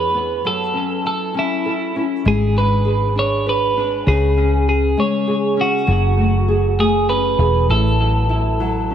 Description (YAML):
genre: six-eight pop ballad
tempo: 66 BPM (dotted quarters)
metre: 6/8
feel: straight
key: F# minor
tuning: A4 = 440 Hz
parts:
  - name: twelve-string electric guitar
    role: melody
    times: 0.0-8.9 s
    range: E4 to C#5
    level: -19 LUFS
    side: right 1 dB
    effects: tape echo
  - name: nylon-string guitar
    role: accompaniment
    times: 0.0-8.9 s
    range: A2 to B4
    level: -21 LUFS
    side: left 1 dB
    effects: tape echo
  - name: vintage muted fingered electric bass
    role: bass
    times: 0.0-8.9 s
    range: E1 to F#2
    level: -18 LUFS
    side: equal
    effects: none
room: light reverb, small room reverb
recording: echo-heavy mix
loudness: -15 LUFS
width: side -9 dB against mid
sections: 0.0-5.9 A section; 5.9-8.9 B section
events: none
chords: 0.4 F#m7; 2.3 G#dim; 4.1 C#5; 5.9 F#madd9; 7.7 A5